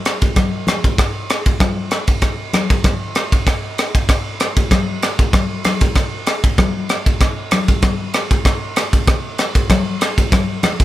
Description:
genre	jazz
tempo	96 BPM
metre	4/4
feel	swing 54% on 16ths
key	none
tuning	none
part	crisp fusion drum kit	drums	0.1-10.8 s	kick drum, ride cymbal, rim click	-15 LUFS	equal	none
part	congas	percussion	0.1-10.8 s	none	-21 LUFS	left 3 dB	none
room	little or no reverb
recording	none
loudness	-14 LUFS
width	side -14 dB against mid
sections	0.0-10.8 A section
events	none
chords	none

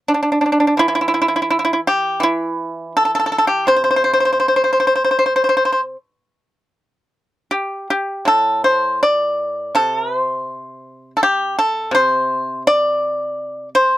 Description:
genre	chinese traditional, Chinese solo plucked strings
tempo	74-86 BPM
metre	4/4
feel	rubato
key	C gong mode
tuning	A4 = 441 Hz
part	pipa	solo	0.1-14.0 s	A2 to D5	-15 LUFS	equal	none
room	little or no reverb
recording	dry, close 1970s-style studio recording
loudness	-15 LUFS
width	side -14 dB against mid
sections	0.0-6.8 A section; 6.8-14.0 B section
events	none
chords	none

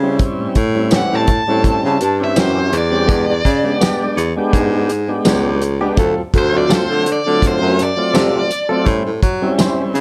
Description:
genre	straight-eighth soul blues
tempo	83 BPM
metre	4/4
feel	swing 55% on 16ths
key	unclear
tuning	A4 = 441 Hz
part	tonewheel organ	accompaniment	0.0-10.0 s	F#3 to G4	-23 LUFS	equal	overdrive, slow rotary speaker
part	clear baritone saxophone	bass	0.0-10.0 s	C#2 to F#3	-20 LUFS	equal	none
part	warm soul drum kit	drums	0.2-10.0 s	hi-hat, kick drum, snare drum, tambourine	-20 LUFS	equal	none
part	direct-recorded clean electric guitar	stabs	0.9-9.8 s	E3 to B#4	-23 LUFS	equal	subtle chorus
part	overdriven electric guitar	melody	1.0-8.9 s	B#4 to A5	-22 LUFS	equal	slapback echo
room	studio reverb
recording	none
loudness	-16 LUFS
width	mono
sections	0.0-10.0 A section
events	none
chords	0.0 A7#9; 3.1 E7#9; 6.0 D7#9; 8.9 A7#9

